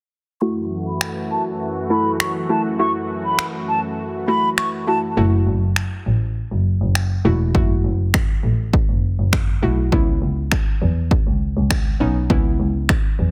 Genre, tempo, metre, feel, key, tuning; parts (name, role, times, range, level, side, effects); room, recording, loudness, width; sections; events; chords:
dance-pop; 101 BPM; 4/4; straight; F# minor; A4 = 440 Hz
mellow hollow silver concert flute; melody; 0.4-5.0 s; A5 to C#6; -25 LUFS; equal; sidechain pumping, low-pass filter, digital delay
soft round pluck; accompaniment; 0.4-12.9 s; A3 to A4; -24 LUFS; equal; chorus, sidechain pumping, low-pass filter
supersaw pad; sustained chords; 0.4-5.1 s; F#2 to F#4; -28 LUFS; equal; sidechain pumping, low-pass filter
house drum kit; drums; 1.0-13.0 s; finger snaps, kick drum; -22 LUFS; equal; soft clipping on snare
muted double bass; bass; 5.2-13.3 s; E1 to E2; -22 LUFS; equal; sidechain pumping
light reverb, studio reverb; dense, heavily limited modern master; -20 LUFS; mono
0.4-5.2 A section; 5.2-13.3 B section
filter sweep 0.4-5.2
0.4 F#m7; 9.9 C#m7